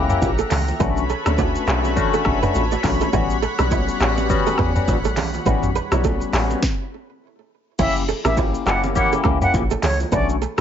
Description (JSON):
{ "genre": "afrobeats", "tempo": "103 BPM", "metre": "4/4", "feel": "swing 58% on 16ths", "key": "unclear", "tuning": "A4 = 440 Hz", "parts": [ { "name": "barky tine electric piano", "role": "accompaniment", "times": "0.0-10.6 s", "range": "G3 to G4", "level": "-23 LUFS", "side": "left 6 dB", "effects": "overdrive, phaser" }, { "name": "lush unison pad", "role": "sustained chords", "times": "0.0-6.6 s", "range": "G3 to B5", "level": "-27 LUFS", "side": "equal", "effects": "chorus" }, { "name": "kora", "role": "riff", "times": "0.0-10.6 s", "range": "C#4 to D5", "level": "-26 LUFS", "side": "right 9 dB", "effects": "digital delay" }, { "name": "deep log drum bass", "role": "bass", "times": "0.0-10.6 s", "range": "F#1 to E2", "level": "-23 LUFS", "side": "equal", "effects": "none" }, { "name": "afro-pop drum kit", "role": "drums", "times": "0.1-10.6 s", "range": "crash cymbal, handclaps, hi-hat, kick drum, rim click, shaker, snare drum, toms", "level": "-23 LUFS", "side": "equal", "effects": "none" }, { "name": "bongos and congas", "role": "percussion", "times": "0.2-10.6 s", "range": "none", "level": "-30 LUFS", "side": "right 6 dB", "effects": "none" }, { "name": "bright reedy silver concert flute", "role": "melody", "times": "7.8-10.3 s", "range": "C#5 to F#5", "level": "-24 LUFS", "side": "right 1 dB", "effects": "digital delay" } ], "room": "light reverb", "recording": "nothing above 7.6 kHz", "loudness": "-17 LUFS", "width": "side -9 dB against mid", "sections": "0.0-7.8 A section; 7.8-10.6 A section", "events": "stop 6.6-7.8", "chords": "0.0 F#7b9; 0.8 Bm9; 3.1 A13; 7.8 F#7b9", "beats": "0.22 | 0.80 1.38 1.97 2.55 | 3.13 3.71 4.30 4.88 | 5.46 6.04 6.63 7.21 | 7.79 8.37 8.96 9.54 | 10.12" }